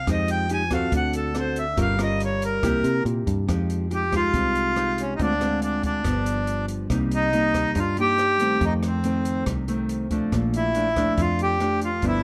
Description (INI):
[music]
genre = bossa nova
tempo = 140 BPM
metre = 4/4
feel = straight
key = unclear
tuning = A4 = 440 Hz
[part]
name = accordion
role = melody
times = 0.0-12.2 s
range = C4 to Ab5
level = -26 LUFS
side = equal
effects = none
[part]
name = nylon-string guitar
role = accompaniment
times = 0.0-12.2 s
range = F2 to Bb4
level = -28 LUFS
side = equal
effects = none
[part]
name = fingered electric bass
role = bass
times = 0.0-12.2 s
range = G1 to C3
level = -30 LUFS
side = equal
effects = none
[part]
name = open jazz drum kit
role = drums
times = 0.1-12.1 s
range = hi-hat, kick drum, rim click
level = -34 LUFS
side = equal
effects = none
[sound]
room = light reverb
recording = none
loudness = -23 LUFS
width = mono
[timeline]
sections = 0.0-3.5 A section; 3.5-12.2 B section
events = accordion solo 0.0-3.5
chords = 0.1 Fm9; 0.9 D7; 1.8 Gm7b5; 2.6 C7; 3.5 Fm9; 5.2 Dm7b5; 6.0 G7; 6.9 Cm7; 8.6 F7; 10.3 Bbmaj7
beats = | 0.07 0.50 0.92 1.35 | 1.78 2.20 2.63 3.06 | 3.48 3.91 4.34 4.76 | 5.19 5.62 6.05 6.47 | 6.90 7.33 7.75 8.18 | 8.61 9.04 9.46 9.89 | 10.32 10.74 11.17 11.60 | 12.03